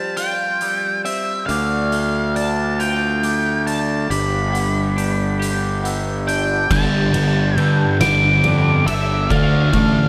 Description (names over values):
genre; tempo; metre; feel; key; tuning
post-rock; 46 BPM (dotted quarters); 6/8; straight; unclear; A4 = 440 Hz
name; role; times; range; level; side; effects
octave-fuzz lead guitar; melody; 0.0-10.1 s; E5 to D6; -24 LUFS; equal; distortion, tape echo
electric guitar through a small old amp; arpeggios; 0.0-10.1 s; G2 to A4; -28 LUFS; equal; phaser, tape echo
glockenspiel with rubber mallets; arpeggios; 0.0-10.1 s; D6 to A6; -33 LUFS; equal; tape echo
oversized low-tuned drum kit; drums; 0.2-9.9 s; crash cymbal, hi-hat, kick drum, ride cymbal, snare drum; -30 LUFS; equal; none
fuzz fingered electric bass; bass; 1.5-10.1 s; G1 to G2; -23 LUFS; equal; overdrive
thick fuzz guitar; riff; 6.7-10.1 s; G2 to D4; -20 LUFS; equal; distortion
room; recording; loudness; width
light reverb, studio reverb; none; -18 LUFS; mono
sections
0.0-6.7 A section; 6.7-10.1 B section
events
build-up 6.7-10.1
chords
0.0 Fsus2; 1.5 Dm; 4.1 G; 6.7 Gadd9; 9.3 Dm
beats
0.18 | 1.49 2.79 | 4.10 5.40 | 6.71 8.01 | 9.31